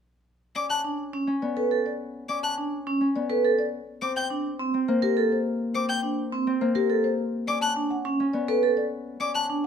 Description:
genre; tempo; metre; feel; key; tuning
classical, minimalist pattern music; 104 BPM; 3/4; straight; unclear; A4 = 440 Hz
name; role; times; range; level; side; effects
marimba with soft mallets; melody; 0.6-9.7 s; G4 to A5; -29 LUFS; left 7 dB; none
Celtic harp; accompaniment; 0.6-9.7 s; Bb3 to C#4; -30 LUFS; left 2 dB; none
clear violin; arpeggios; 0.6-9.5 s; D6 to G6; -28 LUFS; left 1 dB; none
vibraphone with medium hard mallets; arpeggios; 0.8-9.7 s; C4 to B4; -25 LUFS; right 4 dB; none
room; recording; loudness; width
light reverb; close, detailed microphones, faint mains hum; -24 LUFS; side -7 dB against mid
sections
0.3-9.7 A section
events
none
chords
0.3 D5; 3.7 Gm; 7.2 D5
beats
| 0.27 0.84 1.42 | 2.00 2.57 3.15 | 3.73 4.30 4.88 | 5.46 6.03 6.61 | 7.19 7.76 8.34 | 8.92 9.50

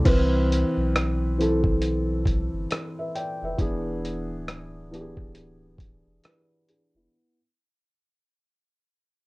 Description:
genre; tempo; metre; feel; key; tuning
lo-fi hip hop; 68 BPM; 4/4; swing 62% on 16ths; C major; A4 = 438 Hz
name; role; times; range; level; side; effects
felt-muted upright piano; accompaniment; 0.0-7.4 s; E3 to G5; -26 LUFS; equal; cassette tape, low-pass filter
warm sub bass; bass; 0.0-7.1 s; D1 to C2; -27 LUFS; equal; none
dusty soul sampler-style drum kit; drums; 0.1-6.9 s; crash cymbal, hi-hat, kick drum, rim click; -25 LUFS; equal; none
room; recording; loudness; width
light reverb; worn, warbling old tape, cassette tape, warbly pitch drift; -23 LUFS; side -22 dB against mid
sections
0.1-7.1 A section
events
fade-out 0.1-7.1; filter sweep on felt piano 0.1-7.1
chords
0.1 Cmaj7; 3.6 E7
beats
| 0.05 0.93 1.82 2.70 | 3.58 4.46 5.34 6.23

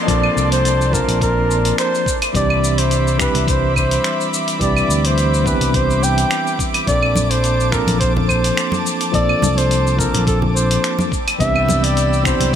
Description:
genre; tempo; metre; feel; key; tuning
sunset chillout; 106 BPM; 4/4; swing 54% on 16ths; Bb major; A4 = 440 Hz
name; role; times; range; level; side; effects
mellow flugelhorn; melody; 0.0-12.6 s; A4 to G5; -20 LUFS; equal; ping-pong delay
tine electric piano; accompaniment; 0.0-12.6 s; E3 to A5; -22 LUFS; equal; medium stereo tremolo, auto-pan, ping-pong delay
airy breathy pad; sustained chords; 0.0-12.6 s; Bb3 to E6; -24 LUFS; equal; chorus
downlifter; sound effects; 0.0-2.3 s; none; -32 LUFS; equal; none
fingered electric bass; bass; 0.1-12.6 s; Bb1 to D2; -19 LUFS; equal; none
dusty soul sampler-style drum kit; drums; 0.1-12.5 s; claves, finger snaps, hi-hat, shaker; -22 LUFS; left 1 dB; none
electronic kick drum; drums; 0.1-12.6 s; none; -23 LUFS; equal; none
congas; percussion; 7.2-12.5 s; none; -24 LUFS; right 2 dB; none
room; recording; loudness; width
light reverb; bright 1980s-style digital production; -14 LUFS; side -9 dB against mid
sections
0.0-12.6 A section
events
none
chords
0.0 Bbmaj9; 2.1 Cmaj9; 6.9 Bbmaj9; 11.1 Cmaj9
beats
| 0.08 0.65 1.21 1.78 | 2.34 2.91 3.48 4.04 | 4.61 5.17 5.74 6.31 | 6.87 7.44 8.00 8.57 | 9.14 9.70 10.27 10.84 | 11.40 11.97 12.53

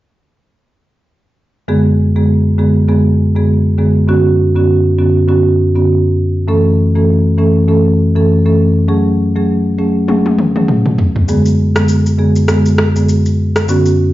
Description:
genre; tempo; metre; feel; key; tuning
afrobeats; 100 BPM; 4/4; swing 58% on 16ths; unclear; A4 = 440 Hz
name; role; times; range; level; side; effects
marimba with medium mallets; accompaniment; 1.7-13.9 s; F#2 to A4; -10 LUFS; equal; none
deep house drum kit; drums; 10.1-14.0 s; rim click, shaker, toms; -16 LUFS; left 1 dB; overdrive
room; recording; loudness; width
moderate studio ambience, RT60 0.5 s; played on a big sound system in a bare room, stone room reverb, nothing above 7.5 kHz; -10 LUFS; side -16 dB against mid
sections
1.7-14.1 A section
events
drum fill 10.1-11.3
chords
1.7 G#dim/F#; 4.1 Bmadd9/F#; 6.5 A/F#; 8.9 F#madd9; 11.3 G#dim/F#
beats
| 1.69 2.29 2.88 3.48 | 4.08 4.68 5.29 5.88 | 6.49 7.08 7.68 8.29 | 8.88 9.48 10.09 10.69 | 11.29 11.88 12.48 13.09 | 13.69

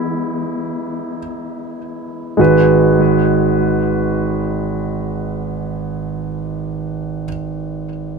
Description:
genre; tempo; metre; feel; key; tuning
pop; free time; none; none; G# minor; A4 = 441 Hz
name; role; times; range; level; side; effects
warm concert grand piano; accompaniment; 0.0-8.2 s; G#1 to B4; -16 LUFS; right 1 dB; analog delay
room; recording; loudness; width
moderate plate reverb, RT60 2.8 s; echo-heavy mix; -15 LUFS; side -4 dB against mid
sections
0.0-2.4 A section; 2.4-7.2 B section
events
slowing down 0.0-2.4; grand piano solo 0.0-2.4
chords
0.0 E; 2.4 G#m7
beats
free time

